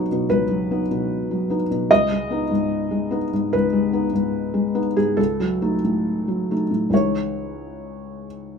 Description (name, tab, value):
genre	neoclassical minimalist piano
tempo	67-75 BPM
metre	4/4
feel	rubato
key	unclear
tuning	A4 = 438 Hz
part	felt-muted upright piano	solo	0.0-8.6 s	C#2 to D#5	-19 LUFS	left 1 dB	none
room	light reverb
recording	minimal, uncompressed stereo recording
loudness	-19 LUFS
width	side -6 dB against mid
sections	0.0-8.6 A section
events	none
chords	0.0 B/C#; 1.9 G#m/C#; 5.2 D#dim/C#; 6.9 C#madd9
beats	0.28 1.08 | 1.90 2.71 3.53 4.35 | 5.18 6.04 6.91 7.79